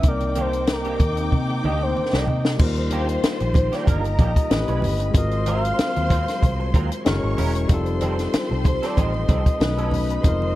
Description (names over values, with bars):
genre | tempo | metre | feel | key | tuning
lush 1970s-style soul | 94 BPM | 4/4 | swing 54% on 16ths | Eb major | A4 = 437 Hz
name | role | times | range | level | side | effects
expressive synth lead | melody | 0.0-10.5 s | Bb4 to F5 | -27 LUFS | equal | chorus
warm studio violin section | second line | 0.0-10.6 s | Eb4 to D6 | -31 LUFS | left 2 dB | none
barky tine electric piano | accompaniment | 0.0-10.6 s | G3 to B4 | -28 LUFS | left 3 dB | overdrive
soft string machine | sustained chords | 0.0-10.6 s | C3 to Bb4 | -34 LUFS | left 1 dB | phaser, ensemble chorus
vintage muted fingered electric bass | bass | 0.0-10.6 s | Fb1 to C3 | -24 LUFS | equal | none
compact cocktail drum kit | drums | 0.0-10.4 s | crash cymbal, hi-hat, kick drum, snare drum | -21 LUFS | equal | none
congas | percussion | 0.0-10.6 s | none | -31 LUFS | right 2 dB | none
electric guitar through a small old amp | riff | 0.4-10.1 s | Eb3 to C5 | -33 LUFS | right 5 dB | ensemble chorus
room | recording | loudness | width
small room ambience | dark, warm production | -19 LUFS | side -16 dB against mid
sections
0.0-2.6 A section; 2.6-10.6 B section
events
analog synth lead solo 0.0-2.6; drum fill 1.3-2.6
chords
0.0 Cm9; 2.6 Ebmaj9; 4.5 A9; 5.1 Ab13; 7.1 Gb9; 7.7 F9; 9.6 B9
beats
| 0.04 0.68 1.32 1.96 | 2.60 3.23 3.87 4.51 | 5.14 5.78 6.42 7.06 | 7.69 8.33 8.97 9.61 | 10.24